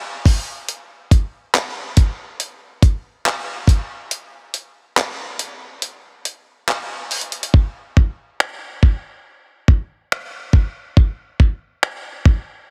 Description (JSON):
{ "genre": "R&B", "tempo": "70 BPM", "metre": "4/4", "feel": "straight", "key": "none", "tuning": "none", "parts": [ { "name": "dusty soul sampler-style drum kit", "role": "drums", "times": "0.3-12.5 s", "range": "finger snaps, handclaps, hi-hat, kick drum", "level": "-17 LUFS", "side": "equal", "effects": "none" } ], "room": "light reverb, digital ambience", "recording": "dense, heavily limited modern master", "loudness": "-20 LUFS", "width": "mono", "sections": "0.0-7.5 A section; 7.5-12.7 B section", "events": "break 4.1-7.5", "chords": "none", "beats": "| 0.68 1.54 2.40 3.25 | 4.11 4.97 5.83 6.68 | 7.54 8.40 9.25 10.11 | 10.97 11.82" }